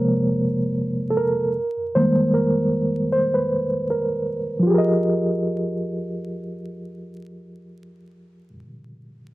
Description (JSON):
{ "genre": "R&B", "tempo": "77 BPM", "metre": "4/4", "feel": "swing 55% on 16ths", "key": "F minor", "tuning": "A4 = 442 Hz", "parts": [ { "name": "mellow reed electric piano", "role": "accompaniment", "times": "0.0-9.3 s", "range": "C3 to Eb5", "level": "-20 LUFS", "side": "equal", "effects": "fast tremolo" } ], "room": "moderate studio reverb, RT60 0.5 s", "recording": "dark, warm production, vinyl crackle", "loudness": "-19 LUFS", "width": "side -17 dB against mid", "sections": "0.0-4.7 A section; 4.7-7.8 B section", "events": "reed electric piano solo 0.0-4.7", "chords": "0.0 Bbm9/C; 1.6 Ebadd11; 4.7 Fm11", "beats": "0.00 0.78 | 1.56 2.34 3.12 3.90 | 4.68 5.46 6.24 7.01" }